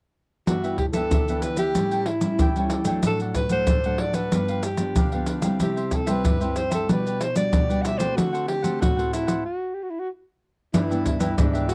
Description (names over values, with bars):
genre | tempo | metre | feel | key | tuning
samba and choro | 94 BPM | 4/4 | straight | G major | A4 = 439 Hz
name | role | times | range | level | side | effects
breathy alto saxophone | melody | 0.5-11.7 s | D4 to F#5 | -29 LUFS | equal | none
cavaquinho | accompaniment | 0.5-11.7 s | D4 to G5 | -34 LUFS | equal | none
nylon-string guitar | accompaniment | 0.5-11.7 s | G2 to F#4 | -30 LUFS | equal | none
maracas, surdo and pandeiro | percussion | 0.5-11.7 s | none | -26 LUFS | equal | none
nylon-string guitar | bass | 10.7-11.7 s | G2 to Ab2 | -29 LUFS | equal | none
room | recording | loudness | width
light reverb | dry, close 1970s-style studio recording | -24 LUFS | mono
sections
0.5-10.7 A section; 10.7-11.7 B section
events
stop 9.5-10.7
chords
0.5 G6; 1.8 A7; 3.0 D/A; 4.3 G7; 5.6 C; 6.9 Gmaj7/B; 8.2 D7; 10.7 G6